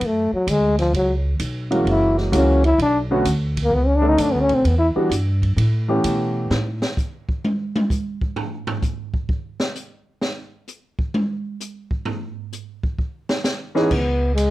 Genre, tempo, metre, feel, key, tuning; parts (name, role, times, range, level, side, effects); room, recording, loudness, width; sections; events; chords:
jazz, small-group swing and bop; 129 BPM; 4/4; swing 67% on 8ths; F# minor; A4 = 440 Hz
breathy trombone; melody; 0.0-4.9, 13.9-14.5 s; E#3 to E4; -18 LUFS; left 1 dB
upright bass; bass; 0.0-6.8, 13.9-14.5 s; F#1 to B2; -21 LUFS; equal; transformer saturation
open jazz drum kit; drums; 0.0-14.5 s; crash cymbal, hi-hat, kick drum, ride cymbal, snare drum, toms; -25 LUFS; equal
warm baby grand piano; accompaniment; 1.7-6.5, 13.8-13.9 s; D3 to A4; -20 LUFS; right 1 dB
light reverb; worn, warbling old tape, cassette tape, warbly pitch drift; -18 LUFS; side -16 dB against mid
0.0-13.9 A section
trombone solo 0.0-13.9; drum solo 6.5-13.9
0.0 F#5; 0.9 C#m7; 1.9 F#7; 2.8 Bm9; 4.6 Em7; 5.6 A7; 6.5 N.C.; 13.0 C#5; 13.9 C#7(no3)